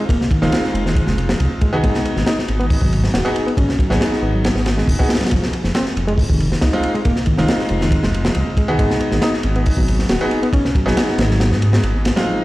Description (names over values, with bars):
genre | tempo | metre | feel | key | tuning
breakbeat, breaks | 138 BPM | 4/4 | straight | unclear | A4 = 444 Hz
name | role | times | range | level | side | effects
overdriven reed electric piano | riff | 0.0-12.4 s | Eb3 to Gb4 | -22 LUFS | equal | low-pass filter, dub echo
dark detuned saw bass | bass | 0.1-12.1 s | Eb1 to Ab2 | -18 LUFS | equal | tube saturation
crunchy breakbeat drum kit | drums | 0.1-12.3 s | hi-hat, kick drum, ride cymbal, snare drum | -19 LUFS | equal | none
bright grand piano | stabs | 0.4-12.4 s | Ab3 to Ab4 | -22 LUFS | equal | dub echo
phased analog pad | sustained chords | 12.3-12.4 s | none | barely audible | none | none
room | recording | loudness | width
light reverb | played on a big sound system in a bare room, stone room reverb | -15 LUFS | side -18 dB against mid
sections
0.0-12.3 A section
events
none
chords
0.0 Fm7; 1.8 Abm7; 5.3 Fm7; 8.8 Abm7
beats
| 0.10 0.53 0.96 1.40 | 1.83 2.27 2.70 3.14 | 3.57 4.01 4.44 4.88 | 5.31 5.75 6.18 6.62 | 7.05 7.49 7.92 8.36 | 8.79 9.22 9.66 10.10 | 10.53 10.96 11.40 11.83 | 12.27